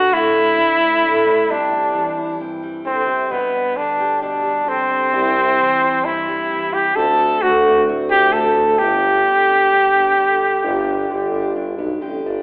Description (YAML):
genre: acoustic folk duo or small band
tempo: 66 BPM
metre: 4/4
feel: straight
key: G major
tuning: A4 = 440 Hz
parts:
  - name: warm flugelhorn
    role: melody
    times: 0.0-11.5 s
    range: B3 to A4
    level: -15 LUFS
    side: equal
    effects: none
  - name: fingerpicked steel-string acoustic guitar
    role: accompaniment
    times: 0.0-12.4 s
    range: G2 to G4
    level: -22 LUFS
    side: equal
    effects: none
  - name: warm tuba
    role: bass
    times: 5.1-12.4 s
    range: G1 to D2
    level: -22 LUFS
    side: equal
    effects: none
room: wet recital hall reverb, RT60 1.3 s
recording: recorded in a church or concert hall, telephone sound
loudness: -14 LUFS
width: side -27 dB against mid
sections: 0.0-12.4 A section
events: none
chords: 0.0 D5; 1.5 C; 3.3 G/B; 5.1 C; 7.0 D7; 8.8 G